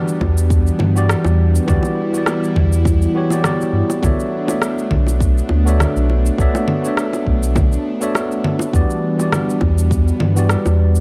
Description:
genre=sunset chillout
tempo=102 BPM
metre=4/4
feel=swing 54% on 16ths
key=unclear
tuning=A4 = 440 Hz
part: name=tine electric piano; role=accompaniment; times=0.0-11.0 s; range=E3 to E5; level=-24 LUFS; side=equal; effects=vintage 12-bit sampler grit, tape echo
part: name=airy breathy pad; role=sustained chords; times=0.0-11.0 s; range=E3 to E4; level=-24 LUFS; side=equal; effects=chorus
part: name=electronic shaker, congas and rim click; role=drums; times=0.1-11.0 s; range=none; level=-25 LUFS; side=equal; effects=studio reverb
part: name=warm sub bass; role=bass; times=0.2-11.0 s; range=B1 to G2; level=-18 LUFS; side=equal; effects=none
part: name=electronic kick drum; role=drums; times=0.2-10.0 s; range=none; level=-21 LUFS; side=equal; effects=studio reverb
part: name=bongos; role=percussion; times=0.2-10.8 s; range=none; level=-28 LUFS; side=equal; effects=none
room=light reverb, digital ambience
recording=dry, gritty hardware recording, cassette tape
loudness=-17 LUFS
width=mono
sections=0.0-11.0 A section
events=none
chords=0.0 Em7; 4.0 Bm11; 8.7 Em7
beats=0.51 1.09 | 1.68 2.27 2.86 3.45 | 4.04 4.62 5.21 5.80 | 6.39 6.98 7.56 8.15 | 8.74 9.33 9.92 10.51

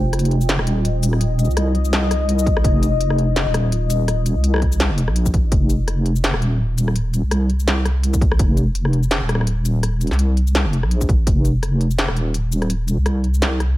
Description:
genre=half-time drum and bass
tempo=167 BPM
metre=4/4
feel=swing 56% on 16ths, half-time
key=unclear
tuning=A4 = 440 Hz
part: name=deep dark ambient pad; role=sustained chords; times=0.0-5.5 s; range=F4 to Eb5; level=-26 LUFS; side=left 4 dB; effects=chorus, built-in reverb, vintage 12-bit sampler grit, sidechain pumping
part: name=deep soft wobble bass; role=bass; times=0.0-13.8 s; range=Eb1 to C2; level=-18 LUFS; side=equal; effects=chorus, tube saturation
part: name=industrial drum kit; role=drums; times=0.1-13.7 s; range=hi-hat, rim click, shaker, snare drum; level=-24 LUFS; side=left 1 dB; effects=none
part: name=electronic kick drum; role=drums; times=2.5-5.6, 8.1-8.5, 11.0-11.3 s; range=none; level=-18 LUFS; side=equal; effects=none
room=little or no reverb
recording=none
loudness=-16 LUFS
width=side -16 dB against mid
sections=0.0-5.5 A section; 5.5-13.8 A section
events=drop 0.0-5.5, 5.5-13.8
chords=0.0 F5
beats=0.13 0.49 0.85 | 1.21 1.57 1.93 2.28 | 2.64 3.00 3.36 3.72 | 4.08 4.44 4.80 5.16 | 5.52 5.88 6.24 6.60 | 6.96 7.31 7.67 8.03 | 8.39 8.75 9.11 9.47 | 9.83 10.19 10.55 10.91 | 11.27 11.63 11.98 12.34 | 12.70 13.06 13.42

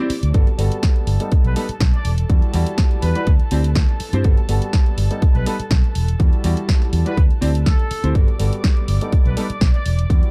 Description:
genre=filtered disco house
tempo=123 BPM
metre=4/4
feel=swing 53% on 16ths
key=G major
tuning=A4 = 439 Hz
part: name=warm concert grand piano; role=accompaniment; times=0.0-10.3 s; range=G3 to D5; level=-28 LUFS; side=equal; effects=phaser, sidechain pumping, low-pass filter
part: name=warm chamber violin section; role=sustained chords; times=0.0-10.3 s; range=A4 to D6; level=-37 LUFS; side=equal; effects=sidechain pumping, low-pass filter
part: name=vintage muted fingered electric bass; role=bass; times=0.1-10.2 s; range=E1 to G2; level=-22 LUFS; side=equal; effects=sidechain pumping, low-pass filter
part: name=house drum kit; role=drums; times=0.1-10.3 s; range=hi-hat, snare drum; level=-30 LUFS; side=equal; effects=none
part: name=electronic kick drum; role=drums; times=0.3-10.2 s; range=none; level=-18 LUFS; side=equal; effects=none
part: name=bright trumpet section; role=melody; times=1.4-9.9 s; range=A4 to D5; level=-33 LUFS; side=equal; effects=vintage 12-bit sampler grit, sidechain pumping, low-pass filter, delay
room=little or no reverb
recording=dark, warm production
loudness=-18 LUFS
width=mono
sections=0.0-10.3 A section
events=break 0.0-0.3; filter sweep 0.0-10.3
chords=0.3 Gmaj9; 1.3 Baug7; 2.1 Em9; 3.3 D9sus4; 4.2 Gmaj9; 5.2 Baug7; 6.0 Em9; 7.2 D9sus4; 8.2 Gmaj9; 9.1 B7alt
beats=| 0.35 0.84 1.32 1.81 | 2.30 2.79 3.27 3.76 | 4.25 4.74 5.23 5.71 | 6.20 6.69 7.18 7.67 | 8.15 8.64 9.13 9.62 | 10.10

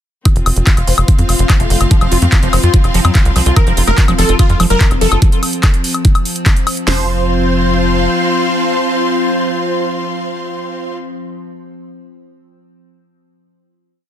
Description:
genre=psychedelic trance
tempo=145 BPM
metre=4/4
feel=straight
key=unclear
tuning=A4 = 440 Hz
part: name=evolving wavetable pad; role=sustained chords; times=0.5-11.0 s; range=F3 to C4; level=-20 LUFS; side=equal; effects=phaser, built-in reverb, sidechain pumping
part: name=drum and bass drum kit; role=drums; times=0.3-7.0 s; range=hi-hat, kick drum, snare drum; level=-11 LUFS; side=equal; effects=overdrive
part: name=drum and bass drum kit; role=drums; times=0.3-6.9 s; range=handclaps, hi-hat, woodblock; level=-18 LUFS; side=left 2 dB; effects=overdrive
part: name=bright studio string section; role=texture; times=0.3-10.9 s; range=C4 to C6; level=-20 LUFS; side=left 3 dB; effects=sidechain pumping
part: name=tight sequencer bass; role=bass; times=0.4-8.1 s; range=F1 to F2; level=-14 LUFS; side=equal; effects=none
part: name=resonant blip pluck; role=second line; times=0.9-2.8 s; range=A3 to C4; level=-27 LUFS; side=left 5 dB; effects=phaser, lush chorus, sidechain pumping, high-pass filter, ping-pong delay
part: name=liquid acid bass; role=riff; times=1.9-7.1 s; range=F3 to F4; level=-20 LUFS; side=moving between left 7 dB and right 2 dB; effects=phaser, auto-pan, cassette tape, sidechain pumping, digital delay
part: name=supersaw stab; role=melody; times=3.6-10.9 s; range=F4 to C5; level=-20 LUFS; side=right 1 dB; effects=phaser, sidechain pumping, ping-pong delay
room=digital ambience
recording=dense, heavily limited modern master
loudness=-10 LUFS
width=side -10 dB against mid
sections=0.3-6.9 groove; 6.9-10.2 final chord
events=none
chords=0.3 F5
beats=| 0.25 0.67 1.08 1.50 | 1.91 2.32 2.74 3.15 | 3.56 3.98 4.39 4.81 | 5.22 5.63 6.05 6.46 | 6.88 7.29 7.70 8.12 | 8.53 8.94 9.36 9.77

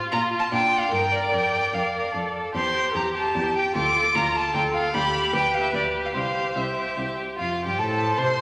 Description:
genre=quick classical-period movement for string quartet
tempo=150 BPM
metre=3/4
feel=straight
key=F major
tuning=A4 = 439 Hz
part: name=rich violin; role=second line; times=0.0-8.4 s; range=F4 to C5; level=-31 LUFS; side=equal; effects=none
part: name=rich viola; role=accompaniment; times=0.0-8.4 s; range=D4 to D5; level=-31 LUFS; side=equal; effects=none
part: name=rich cello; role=bass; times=0.0-8.3 s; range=C2 to C3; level=-34 LUFS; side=equal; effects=none
part: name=bright violin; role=melody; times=0.1-8.4 s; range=D5 to D6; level=-26 LUFS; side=equal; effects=none
room=wet scoring stage reverb, RT60 1.7 s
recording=none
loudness=-24 LUFS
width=mono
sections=0.0-7.4 A section; 7.4-8.4 B section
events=none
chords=0.1 Bb; 0.9 Gm; 1.3 Bb/F; 2.6 C/E; 3.8 Dm; 4.9 G/D; 6.2 C; 7.4 F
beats=| 0.13 0.52 0.92 | 1.33 1.74 2.15 | 2.55 2.95 3.35 | 3.75 4.15 4.55 | 4.94 5.34 5.74 | 6.15 6.57 6.98 | 7.39 7.79 8.18

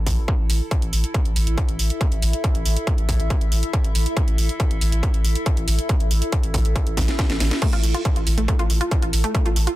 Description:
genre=driving peak-time techno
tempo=139 BPM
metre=4/4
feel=straight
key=unclear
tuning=A4 = 441 Hz
part: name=saturated sub bass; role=bass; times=0.0-9.7 s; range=A1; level=-21 LUFS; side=equal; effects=sidechain pumping, low-pass filter
part: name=warbly tape-like pad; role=texture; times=0.0-9.8 s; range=E4 to A5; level=-31 LUFS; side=equal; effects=chorus, built-in reverb, phaser, sidechain pumping
part: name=electronic kick drum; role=drums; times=0.1-9.4 s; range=none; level=-21 LUFS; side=equal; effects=distortion, overdrive
part: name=techno drum kit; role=drums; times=0.1-9.8 s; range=crash cymbal, hi-hat, snare drum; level=-27 LUFS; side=right 2 dB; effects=overdrive, sidechain pumping on hats, sidechain pumping on cymbals
part: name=analog pluck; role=riff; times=7.6-9.7 s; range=A3 to F4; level=-27 LUFS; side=right 1 dB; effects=chorus, sidechain pumping, digital delay
room=digital ambience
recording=dense, heavily limited modern master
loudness=-18 LUFS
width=side -16 dB against mid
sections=0.0-9.8 A section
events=fade-in on ambient pad 0.0-9.8; drum fill 7.0-7.6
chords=0.0 A5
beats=0.28 | 0.71 1.15 1.58 2.01 | 2.44 2.87 3.30 3.73 | 4.17 4.60 5.03 5.46 | 5.89 6.33 6.76 7.19 | 7.62 8.05 8.48 8.91 | 9.35

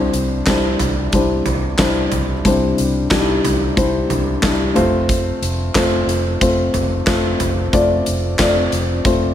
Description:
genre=piano-driven pop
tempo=91 BPM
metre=4/4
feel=swing 56% on 16ths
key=C major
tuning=A4 = 440 Hz
part: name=felt-muted upright piano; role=accompaniment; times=0.0-9.3 s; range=C3 to D5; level=-17 LUFS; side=left 2 dB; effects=plate reverb
part: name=vintage muted fingered electric bass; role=bass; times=0.0-9.3 s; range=F1 to C2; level=-23 LUFS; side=right 1 dB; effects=none
part: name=huge arena drum kit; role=drums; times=0.1-9.2 s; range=handclaps, hi-hat, kick drum, snare drum, toms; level=-20 LUFS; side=right 1 dB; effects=none
room=moderate studio ambience, RT60 0.5 s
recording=none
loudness=-14 LUFS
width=side -10 dB against mid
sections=0.0-9.3 A section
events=none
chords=0.0 Cadd9; 4.8 F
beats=0.47 1.13 1.79 | 2.45 3.11 3.77 4.43 | 5.09 5.75 6.41 7.07 | 7.73 8.39 9.05

